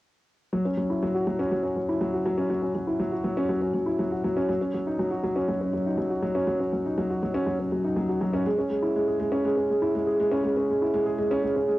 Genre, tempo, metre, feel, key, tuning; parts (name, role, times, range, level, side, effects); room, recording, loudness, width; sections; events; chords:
electronica; 121 BPM; 4/4; straight; A4 = 441 Hz
dark grand piano; solo; 0.5-11.8 s; F#3 to G#4; -24 LUFS; equal; cassette tape
wet booth ambience, RT60 0.2 s; home recording on cassette; -24 LUFS; side -17 dB against mid
0.5-11.8 A section